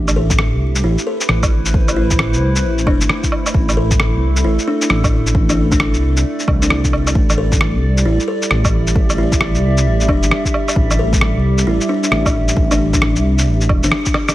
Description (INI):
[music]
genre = future garage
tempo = 133 BPM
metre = 4/4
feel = swing 63% on 16ths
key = A minor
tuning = A4 = 442 Hz
[part]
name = warbly tape-like pad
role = sustained chords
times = 0.0-14.3 s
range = G3 to E5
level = -23 LUFS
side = right 1 dB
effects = chorus, built-in reverb, sidechain pumping
[part]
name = dark detuned saw bass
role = bass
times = 0.0-13.9 s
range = E1 to C2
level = -16 LUFS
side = equal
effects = sidechain pumping
[part]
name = electronic shaker, woodblock and rim click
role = drums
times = 0.1-14.3 s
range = none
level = -19 LUFS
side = equal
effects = studio reverb
[part]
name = buzzing kalimba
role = melody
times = 0.2-14.3 s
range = D4 to A4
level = -22 LUFS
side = left 1 dB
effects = tape echo
[part]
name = electronic kick drum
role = drums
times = 0.3-14.1 s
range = none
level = -18 LUFS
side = equal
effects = overdrive, studio reverb
[sound]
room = digital ambience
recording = vinyl crackle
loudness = -13 LUFS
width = side -15 dB against mid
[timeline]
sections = 0.0-14.3 A section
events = band accent 13.9; drum fill 14.1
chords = 0.0 Am7; 7.2 C